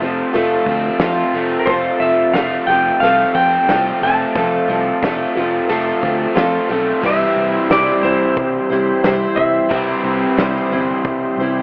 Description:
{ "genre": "folk rock and heartland rock", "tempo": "90 BPM", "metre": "4/4", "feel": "straight", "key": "unclear", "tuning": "A4 = 440 Hz", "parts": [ { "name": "picked twelve-string acoustic guitar", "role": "accompaniment", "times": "0.0-11.6 s", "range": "C3 to C5", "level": "-18 LUFS", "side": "equal", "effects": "dub echo" }, { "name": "tonewheel organ", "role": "sustained chords", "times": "0.0-11.6 s", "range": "F4 to C6", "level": "-28 LUFS", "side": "equal", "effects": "none" }, { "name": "crunchy overdriven guitar", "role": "riff", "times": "0.0-11.6 s", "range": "F2 to F4", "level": "-20 LUFS", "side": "equal", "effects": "dub echo" }, { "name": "fingered electric bass", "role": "bass", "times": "0.0-11.6 s", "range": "F1 to F2", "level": "-28 LUFS", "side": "equal", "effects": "none" }, { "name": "soft brush drum kit", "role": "drums", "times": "0.3-11.2 s", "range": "crash cymbal, hi-hat, kick drum, snare drum", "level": "-22 LUFS", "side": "equal", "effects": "dub echo" }, { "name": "clean lap steel guitar", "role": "melody", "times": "1.6-10.0 s", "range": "Bb4 to A5", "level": "-17 LUFS", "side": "equal", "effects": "dub echo" } ], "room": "moderate spring reverb, RT60 1.6 s, studio reverb", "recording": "echo-heavy mix, telephone sound", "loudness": "-13 LUFS", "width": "side -35 dB against mid", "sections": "0.0-7.0 A section; 7.0-11.6 B section", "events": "none", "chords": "0.0 F; 7.0 C" }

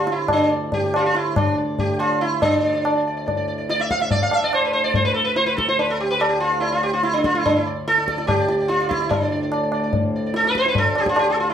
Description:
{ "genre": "indian classical, Hindustani", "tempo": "144 BPM", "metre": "4/4", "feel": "straight", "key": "D raga kafi", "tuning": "A4 = 441 Hz", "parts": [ { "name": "sitar", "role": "melody", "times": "0.0-11.5 s", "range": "D4 to F5", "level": "-19 LUFS", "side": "right 1 dB", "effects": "none" }, { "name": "pedal harmonium", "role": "drone", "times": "0.0-11.5 s", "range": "D2 to A2", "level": "-29 LUFS", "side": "left 1 dB", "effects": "none" }, { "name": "tabla", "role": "percussion", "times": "0.1-11.3 s", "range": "none", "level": "-23 LUFS", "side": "left 2 dB", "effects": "none" } ], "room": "wet studio reverb, RT60 0.8 s", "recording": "band playing live in one room", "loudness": "-18 LUFS", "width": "side -9 dB against mid", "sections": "0.0-2.4 A section; 2.4-11.5 B section", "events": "speeding up 0.0-11.5", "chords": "none" }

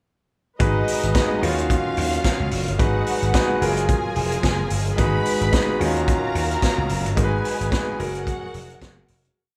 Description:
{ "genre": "disco", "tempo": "110 BPM", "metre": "4/4", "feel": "swing 56% on 16ths", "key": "G# dorian", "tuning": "A4 = 440 Hz", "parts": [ { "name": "warm studio violin section", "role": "second line", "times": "0.6-9.3 s", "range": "D#4 to B5", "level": "-32 LUFS", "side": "equal", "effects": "none" }, { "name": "clear concert grand piano", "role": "accompaniment", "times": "0.6-9.4 s", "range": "D#3 to B4", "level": "-26 LUFS", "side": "equal", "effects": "none" }, { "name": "dark studio string section", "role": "sustained chords", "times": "0.6-9.4 s", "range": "D#3 to E#5", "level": "-34 LUFS", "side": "equal", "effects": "none" }, { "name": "vintage slap bass", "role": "bass", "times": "0.6-9.3 s", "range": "E#1 to D#2", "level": "-28 LUFS", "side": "equal", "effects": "none" }, { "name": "vintage drum kit", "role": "drums", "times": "0.6-9.4 s", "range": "hi-hat, kick drum, snare drum", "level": "-26 LUFS", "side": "equal", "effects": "none" } ], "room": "moderate large studio reverb, RT60 1.3 s", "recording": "band playing live in one room", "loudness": "-21 LUFS", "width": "mono", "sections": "0.6-9.4 verse", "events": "fade-out 7.2-9.4", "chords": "0.6 G#m7; 1.4 D#m9; 2.8 G#m7; 3.6 F#maj9; 5.0 G#m7; 5.8 D#m9; 7.2 G#m7; 8.0 F#maj9" }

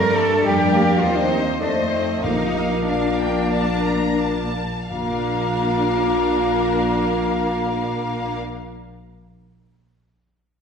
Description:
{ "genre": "quick classical-period movement for symphony orchestra", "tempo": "86-106 BPM", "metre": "4/4", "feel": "rubato", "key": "Bb major", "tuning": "A4 = 445 Hz", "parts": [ { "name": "rich studio violin section", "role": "melody", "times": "0.0-8.4 s", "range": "D5 to Bb5", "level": "-30 LUFS", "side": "left 3 dB", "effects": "none" }, { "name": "mellow silver concert flute", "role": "second line", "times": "0.0-8.4 s", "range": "C5 to Bb5", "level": "-27 LUFS", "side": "left 2 dB", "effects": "none" }, { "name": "rich studio violin section", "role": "second line", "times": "0.0-8.4 s", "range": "Bb4 to C5", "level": "-30 LUFS", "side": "left 2 dB", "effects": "none" }, { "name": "rich studio viola section", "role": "accompaniment", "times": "0.0-8.4 s", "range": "G3 to D4", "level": "-28 LUFS", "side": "right 1 dB", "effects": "none" }, { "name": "warm bassoon", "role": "accompaniment", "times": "0.0-8.4 s", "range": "G3 to C4", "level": "-28 LUFS", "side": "right 1 dB", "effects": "none" }, { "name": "dark French horn section", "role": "sustained chords", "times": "0.0-8.4 s", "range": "A3 to F4", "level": "-25 LUFS", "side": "left 2 dB", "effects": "none" }, { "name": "rich studio cello section", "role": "bass", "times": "0.0-8.4 s", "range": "Bb3 to Bb4", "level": "-25 LUFS", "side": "equal", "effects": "none" }, { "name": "rich studio double bass section", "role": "bass", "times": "0.0-8.4 s", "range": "Bb1 to G2", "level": "-26 LUFS", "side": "right 2 dB", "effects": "none" }, { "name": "timpani", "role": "percussion", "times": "2.2-9.1 s", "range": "Bb2", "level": "-32 LUFS", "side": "right 1 dB", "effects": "none" } ], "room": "wet recital hall reverb, RT60 1.6 s", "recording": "recorded in a church or concert hall", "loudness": "-18 LUFS", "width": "side -6 dB against mid", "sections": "0.0-4.9 A section; 4.9-7.6 B section", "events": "slowing down 0.0-4.9", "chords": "0.0 Gm; 1.0 Cm7/Eb; 1.6 F7; 2.2 Bb" }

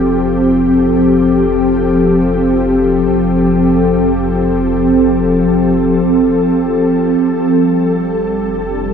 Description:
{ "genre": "ambient", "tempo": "free time", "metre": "none", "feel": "none", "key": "F major", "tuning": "A4 = 442 Hz", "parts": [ { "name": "ethereal airy pad", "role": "sustained chords", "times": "0.0-8.9 s", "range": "F3 to A4", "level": "-10 LUFS", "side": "equal", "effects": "ensemble chorus, built-in reverb" }, { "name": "round analog bass", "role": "bass", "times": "0.0-8.9 s", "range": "F1", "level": "-24 LUFS", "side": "left 1 dB", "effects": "none" } ], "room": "wet cathedral reverb, RT60 6.3 s", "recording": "none", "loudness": "-10 LUFS", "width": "side -7 dB against mid", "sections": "0.0-8.9 A section", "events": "fade-in on analog synth bass 0.0-8.9", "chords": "0.0 F; 7.2 G5/F" }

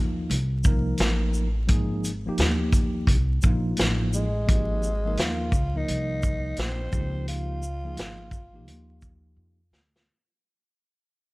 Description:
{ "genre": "hip hop, jazz-hop", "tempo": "86 BPM", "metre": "4/4", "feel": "swing 65% on 16ths", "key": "Ab major", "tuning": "A4 = 439 Hz", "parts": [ { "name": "tine electric piano", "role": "accompaniment", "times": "0.0-9.6 s", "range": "Fb3 to Bb4", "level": "-31 LUFS", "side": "equal", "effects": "fast stereo tremolo" }, { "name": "upright bass", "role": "bass", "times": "0.0-10.0 s", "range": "Ab1 to F2", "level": "-27 LUFS", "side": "equal", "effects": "none" }, { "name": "vintage drum kit", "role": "drums", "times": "0.3-10.1 s", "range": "hi-hat, kick drum, shaker, snare drum", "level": "-24 LUFS", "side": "equal", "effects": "none" }, { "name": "growling tenor saxophone", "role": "melody", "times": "4.1-9.3 s", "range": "Ab3 to F4", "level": "-32 LUFS", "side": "equal", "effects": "none" } ], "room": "studio reverb", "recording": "vinyl crackle", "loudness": "-22 LUFS", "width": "side -22 dB against mid", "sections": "0.0-4.5 A section; 4.5-10.1 B section", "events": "fade-out 4.5-10.1; drum fill 9.4-10.1", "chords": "0.0 Abmaj9; 6.9 Dbadd9" }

